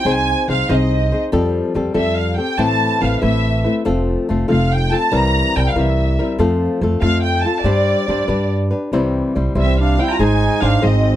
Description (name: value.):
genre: mexican folk, mariachi.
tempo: 95 BPM (dotted quarters).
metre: 6/8.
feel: straight.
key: C major.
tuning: A4 = 440 Hz.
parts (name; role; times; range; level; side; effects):
rich symphonic violin section; melody; 0.0-11.2 s; D5 to Bb5; -20 LUFS; right 1 dB; none.
flamenco guitar; accompaniment; 0.0-11.2 s; A2 to C5; -18 LUFS; left 3 dB; none.
upright bass; bass; 0.1-11.2 s; F1 to G2; -18 LUFS; right 1 dB; none.
dark trumpet; second line; 9.6-11.2 s; C4 to F4; -21 LUFS; right 6 dB; none.
room: little or no reverb.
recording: dry, close 1970s-style studio recording.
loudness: -14 LUFS.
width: side -12 dB against mid.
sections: 0.0-11.2 A section.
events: none.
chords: 0.1 Ab/C; 1.3 Fadd9; 2.6 Amadd9; 3.9 F; 5.1 C7; 6.4 F; 7.6 Gsus4; 8.3 G; 8.9 C; 10.2 Ab.